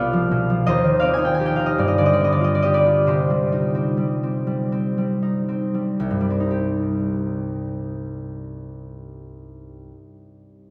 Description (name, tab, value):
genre	classical, solo harp piece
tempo	38-57 BPM (dotted quarters)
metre	6/8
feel	rubato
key	C minor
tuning	A4 = 439 Hz
part	concert harp	solo	0.0-10.0 s	C2 to Ab5	-22 LUFS	equal	none
room	wet cathedral reverb, RT60 5.5 s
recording	in a vast, echoing space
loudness	-21 LUFS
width	mono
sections	0.0-6.0 A section; 6.0-10.7 B section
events	slowing down 0.0-6.0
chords	0.0 Bdim/C; 0.7 Cm/Eb; 1.8 G7; 3.1 Cm